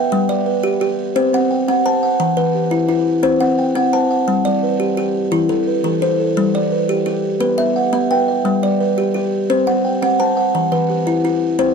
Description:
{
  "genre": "southern african traditional, mbira-style interlocking cycle",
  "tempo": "115 BPM (dotted quarters)",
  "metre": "12/8",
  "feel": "straight",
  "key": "G major",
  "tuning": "A4 = 440 Hz",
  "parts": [
    { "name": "buzzing kalimba", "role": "arpeggios", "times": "0.0-11.6 s", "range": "E3 to G5", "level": "-19 LUFS", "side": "right 7 dB", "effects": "none" },
    { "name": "kalimba", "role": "arpeggios", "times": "0.0-11.7 s", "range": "E3 to A5", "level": "-16 LUFS", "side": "left 3 dB", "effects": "none" }
  ],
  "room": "moderate studio reverb, RT60 0.6 s",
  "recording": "dark, warm production",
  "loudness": "-14 LUFS",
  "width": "side -6 dB against mid",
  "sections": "0.0-11.7 A section",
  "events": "none",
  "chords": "0.1 G; 1.2 C5; 2.2 Em; 3.2 C; 4.3 G; 5.3 Em; 6.4 G; 7.4 B5; 8.5 G; 9.5 C5; 10.5 Em"
}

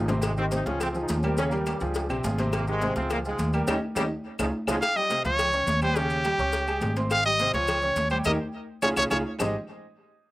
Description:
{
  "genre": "latin, salsa",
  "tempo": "209 BPM",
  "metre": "4/4",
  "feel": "straight",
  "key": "Ab major",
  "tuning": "A4 = 440 Hz",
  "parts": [
    { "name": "brilliant trombone section", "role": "melody", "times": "0.0-4.7 s", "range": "G2 to Eb4", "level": "-32 LUFS", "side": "equal", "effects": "none" },
    { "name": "clear baby grand piano", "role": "accompaniment", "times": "0.0-9.5 s", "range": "C3 to Db6", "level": "-30 LUFS", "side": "equal", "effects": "slapback echo" },
    { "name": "upright bass", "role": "bass", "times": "0.0-9.5 s", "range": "Ab1 to Eb2", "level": "-30 LUFS", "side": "equal", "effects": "none" },
    { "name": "agogo bells and timbales", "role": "percussion", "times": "0.1-9.5 s", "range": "none", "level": "-37 LUFS", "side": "right 3 dB", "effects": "none" },
    { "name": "congas", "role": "percussion", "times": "0.1-9.5 s", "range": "none", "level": "-34 LUFS", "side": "equal", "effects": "none" },
    { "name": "cowbell and bongos", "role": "percussion", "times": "0.1-9.5 s", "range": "none", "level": "-36 LUFS", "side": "left 4 dB", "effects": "none" },
    { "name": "maracas", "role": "percussion", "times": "0.1-9.5 s", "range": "none", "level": "-43 LUFS", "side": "left 3 dB", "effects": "none" },
    { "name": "claves", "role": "percussion", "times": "0.2-9.5 s", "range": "none", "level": "-38 LUFS", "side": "left 2 dB", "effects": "none" },
    { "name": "bright trumpet", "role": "melody", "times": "4.8-9.2 s", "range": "G4 to F5", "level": "-24 LUFS", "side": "equal", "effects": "none" }
  ],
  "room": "little or no reverb",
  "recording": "recorded outdoors, with no room sound",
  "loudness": "-23 LUFS",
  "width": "side -18 dB against mid",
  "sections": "0.0-4.8 A section; 4.8-9.4 B section",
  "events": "drum fill 0.0, 3.7-4.8, 8.3-9.4; band accent 3.7-4.8, 8.3-9.4",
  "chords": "0.2 Abmaj7; 0.8 Dbmaj7; 2.5 Abmaj7; 3.1 Db; 3.7 Eb7; 4.2 Db; 4.8 Dbmaj9#11; 5.4 Db; 6.0 Eb7; 6.5 Db5; 7.1 Abmaj7; 7.7 Db; 8.3 Eb; 8.8 Db; 9.4 Abmaj7"
}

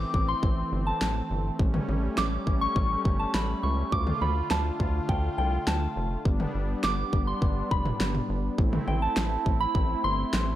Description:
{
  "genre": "synth-pop",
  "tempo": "103 BPM",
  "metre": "4/4",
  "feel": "straight",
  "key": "A minor",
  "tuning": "A4 = 439 Hz",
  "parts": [
    { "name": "soft synth bell", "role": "melody", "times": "0.0-10.6 s", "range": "G5 to D6", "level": "-30 LUFS", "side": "right 1 dB", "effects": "chorus, phaser, dub echo" },
    { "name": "brassy analog pad", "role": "sustained chords", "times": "0.0-10.6 s", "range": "D3 to F4", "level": "-33 LUFS", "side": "equal", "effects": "chorus" },
    { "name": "rubbery square bass", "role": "bass", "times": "0.0-10.5 s", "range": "F1 to D2", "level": "-29 LUFS", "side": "equal", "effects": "none" },
    { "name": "pop drum kit", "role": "drums", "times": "0.1-10.5 s", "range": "kick drum, snare drum, toms", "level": "-28 LUFS", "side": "equal", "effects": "none" }
  ],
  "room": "light reverb",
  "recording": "echo-heavy mix",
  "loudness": "-24 LUFS",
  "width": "side -13 dB against mid",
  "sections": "0.0-10.6 A section",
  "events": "none",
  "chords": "0.0 Am; 1.6 A7; 3.9 Dm; 6.3 G; 8.6 Am"
}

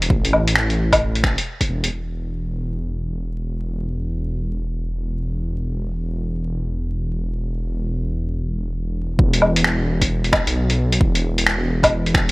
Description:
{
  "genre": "future garage",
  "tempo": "132 BPM",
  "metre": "4/4",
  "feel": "swing 63% on 16ths",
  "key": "unclear",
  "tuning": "A4 = 440 Hz",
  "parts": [
    { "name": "dark detuned saw bass", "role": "bass", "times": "0.0-12.3 s", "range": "E1 to B1", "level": "-22 LUFS", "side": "equal", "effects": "none" },
    { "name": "lo-fi sampler-style drum kit", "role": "drums", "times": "0.0-1.9, 9.3-12.3 s", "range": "finger snaps, hi-hat, woodblock", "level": "-19 LUFS", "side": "equal", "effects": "none" },
    { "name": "electronic kick drum", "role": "drums", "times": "0.1-1.7, 9.2-12.3 s", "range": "none", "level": "-20 LUFS", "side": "equal", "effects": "overdrive" }
  ],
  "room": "little or no reverb",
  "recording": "dry, gritty hardware recording, vinyl crackle",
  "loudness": "-19 LUFS",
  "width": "side -24 dB against mid",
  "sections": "0.0-1.9 A section; 1.9-9.2 B section; 9.2-12.3 C section",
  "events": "none",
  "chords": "none"
}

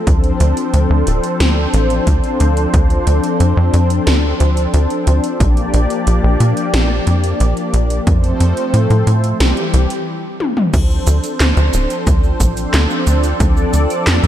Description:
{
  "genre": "synthwave",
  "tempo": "90 BPM",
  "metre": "4/4",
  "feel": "straight",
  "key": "D minor",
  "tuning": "A4 = 439 Hz",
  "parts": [
    { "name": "warm analog pad", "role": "sustained chords", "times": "0.0-14.3 s", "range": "E3 to D5", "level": "-18 LUFS", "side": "left 1 dB", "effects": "chorus, sidechain pumping" },
    { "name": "tight sequencer bass", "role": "bass", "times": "0.1-14.3 s", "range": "D1 to Bb2", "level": "-13 LUFS", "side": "equal", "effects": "none" },
    { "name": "80s electronic pad drums", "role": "drums", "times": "0.1-14.3 s", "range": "cabasa, crash cymbal, handclaps, hi-hat, snare drum, toms", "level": "-21 LUFS", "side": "equal", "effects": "gated reverb on snare and toms, overdrive" },
    { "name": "electronic kick drum", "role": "drums", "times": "0.1-13.5 s", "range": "none", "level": "-16 LUFS", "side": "equal", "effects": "overdrive" }
  ],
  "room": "light reverb, digital ambience",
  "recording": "dark, warm production",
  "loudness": "-12 LUFS",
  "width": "side -11 dB against mid",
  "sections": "0.0-10.7 A section; 10.7-14.3 B section",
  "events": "stop 10.1-10.7; drum fill 10.4-10.7",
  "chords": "0.1 Dm7; 5.4 Bb6; 8.1 F; 9.4 C; 10.7 Dm7"
}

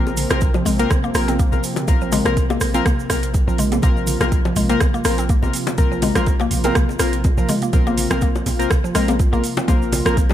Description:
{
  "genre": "afro house",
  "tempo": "123 BPM",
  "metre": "4/4",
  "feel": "swing 55% on 16ths",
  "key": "unclear",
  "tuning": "A4 = 440 Hz",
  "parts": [
    { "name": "warm analog pad", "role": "sustained chords", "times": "0.0-10.3 s", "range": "C3 to F4", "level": "-27 LUFS", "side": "right 1 dB", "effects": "chorus, sidechain pumping" },
    { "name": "mallet-like synth pluck", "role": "arpeggios", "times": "0.0-10.3 s", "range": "F3 to C4", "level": "-24 LUFS", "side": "equal", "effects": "chorus, sidechain pumping, tape echo" },
    { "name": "warm analog keys", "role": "stabs", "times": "0.0-10.2 s", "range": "Bb3 to Bb4", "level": "-24 LUFS", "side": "left 3 dB", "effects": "chorus, sidechain pumping, tape echo" },
    { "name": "warm 808-style bass", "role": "bass", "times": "0.0-10.3 s", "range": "Bb1", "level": "-24 LUFS", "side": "equal", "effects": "sidechain pumping" },
    { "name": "bongos", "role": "percussion", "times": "0.1-10.3 s", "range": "none", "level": "-28 LUFS", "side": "left 6 dB", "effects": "none" },
    { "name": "tube shaker", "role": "percussion", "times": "0.1-10.3 s", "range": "none", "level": "-32 LUFS", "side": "right 5 dB", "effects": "none" },
    { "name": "afro-pop drum kit", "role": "drums", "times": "0.2-10.3 s", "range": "hi-hat, rim click, toms", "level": "-25 LUFS", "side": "right 1 dB", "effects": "overdrive, small room ambience" },
    { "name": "electronic kick drum", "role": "drums", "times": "0.4-10.3 s", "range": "none", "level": "-18 LUFS", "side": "equal", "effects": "overdrive, small room ambience" },
    { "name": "congas", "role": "percussion", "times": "3.8-10.1 s", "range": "none", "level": "-31 LUFS", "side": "right 4 dB", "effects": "none" }
  ],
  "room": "little or no reverb",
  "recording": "none",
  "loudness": "-16 LUFS",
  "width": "side -11 dB against mid",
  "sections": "0.0-10.3 A section",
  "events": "none",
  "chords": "0.0 Bbsus2"
}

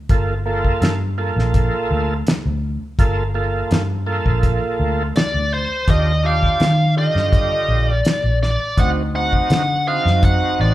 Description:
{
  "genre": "straight-eighth soul blues",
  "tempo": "83 BPM",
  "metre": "4/4",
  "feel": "straight",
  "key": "G minor",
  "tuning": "A4 = 435 Hz",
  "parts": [
    { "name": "overdriven tonewheel organ", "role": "accompaniment", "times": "0.1-10.7 s", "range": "D3 to A4", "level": "-23 LUFS", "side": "right 3 dB", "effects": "slow rotary speaker, chorus vibrato" },
    { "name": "vintage muted fingered electric bass", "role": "bass", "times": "0.1-10.7 s", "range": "G1 to Eb3", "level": "-20 LUFS", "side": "equal", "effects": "none" },
    { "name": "cloth-damped thuddy drum kit", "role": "drums", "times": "0.1-10.4 s", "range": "hi-hat, kick drum, snare drum", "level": "-19 LUFS", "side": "equal", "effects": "none" },
    { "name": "biting lead guitar", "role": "melody", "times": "5.2-10.7 s", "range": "C5 to F#5", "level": "-20 LUFS", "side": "equal", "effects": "overdrive" }
  ],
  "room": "moderate large studio reverb, RT60 1.4 s",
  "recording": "band playing live in one room",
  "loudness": "-16 LUFS",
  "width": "side -15 dB against mid",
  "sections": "0.0-10.7 A section",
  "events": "none",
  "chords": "0.0 Gm9; 5.9 Ebmaj7; 8.8 D7b9"
}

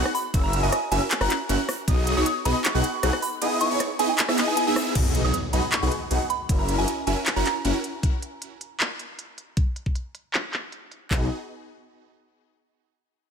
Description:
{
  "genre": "future bass",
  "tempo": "156 BPM",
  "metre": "4/4",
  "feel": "half-time",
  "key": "B major",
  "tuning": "A4 = 445 Hz",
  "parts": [
    { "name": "airy dreamy lead", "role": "arpeggios", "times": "0.0-4.9 s", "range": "C#6 to F#6", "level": "-33 LUFS", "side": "left 1 dB", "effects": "chorus, sidechain pumping" },
    { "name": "supersaw chords", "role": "riff", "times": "0.0-7.7, 11.1-11.3 s", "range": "B3 to F#5", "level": "-26 LUFS", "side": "right 1 dB", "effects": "phaser, sidechain pumping" },
    { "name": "wide detuned saw bass", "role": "bass", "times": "0.0-7.7, 11.1-11.3 s", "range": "F#1 to B1", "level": "-25 LUFS", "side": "equal", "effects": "chorus, tube saturation, sidechain pumping" },
    { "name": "soft synth bell", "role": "melody", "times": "0.1-7.5 s", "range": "G#5 to D#6", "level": "-29 LUFS", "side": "equal", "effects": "chorus, phaser, sidechain pumping, dub echo" },
    { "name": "trap drum kit", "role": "drums", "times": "0.1-11.0 s", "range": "crash cymbal, handclaps, hi-hat, ride cymbal, rim click", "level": "-27 LUFS", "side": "equal", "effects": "low-pass filter on hats, small room ambience, low-pass filter on snare, low-pass filter on cymbals" },
    { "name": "trap drum kit", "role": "drums", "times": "0.3-2.0, 5.0-11.2 s", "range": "handclaps, kick drum", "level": "-23 LUFS", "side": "equal", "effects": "small room ambience" },
    { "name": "impact", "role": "sound effects", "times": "5.0-6.5 s", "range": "none", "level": "-33 LUFS", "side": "left 1 dB", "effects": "none" }
  ],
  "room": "light reverb",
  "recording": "none",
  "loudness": "-22 LUFS",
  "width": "side -6 dB against mid",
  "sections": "0.0-5.0 A section; 5.0-11.1 B section; 11.1-12.6 C section",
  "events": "drop 0.0-5.0; band accent 4.8; impact 5.0-6.5",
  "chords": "0.3 F#7; 1.7 B6; 3.4 Emaj7; 5.0 B6; 6.5 F#7; 7.8 N.C.; 11.1 B6"
}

